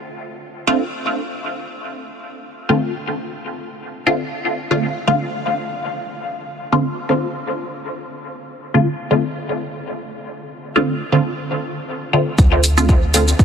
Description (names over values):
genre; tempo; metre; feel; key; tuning
dub techno; 119 BPM; 4/4; swing 55% on 16ths; D minor; A4 = 439 Hz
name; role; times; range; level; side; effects
filtered dub chord stab; stabs; 0.7-13.3 s; D3 to F4; -19 LUFS; equal; phaser, sidechain pumping, dub echo
soft dub sub bass; bass; 12.4-13.3 s; D2; -17 LUFS; equal; sidechain pumping
electronic kick drum; drums; 12.4-13.4 s; none; -12 LUFS; equal; overdrive
electronic shaker and hi-hat; drums; 12.4-13.4 s; none; -20 LUFS; right 1 dB; overdrive, low-pass filter on hats, low-pass filter on perc
room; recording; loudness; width
moderate huge ambient reverb, RT60 7.1 s; none; -17 LUFS; side -7 dB against mid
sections
0.0-12.4 A section; 12.4-13.4 B section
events
none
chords
0.0 Dm7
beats
| 0.28 0.79 1.29 1.79 | 2.30 2.80 3.31 3.81 | 4.32 4.82 5.33 5.83 | 6.33 6.84 7.34 7.85 | 8.35 8.85 9.36 9.86 | 10.37 10.87 11.38 11.88 | 12.38 12.89 13.39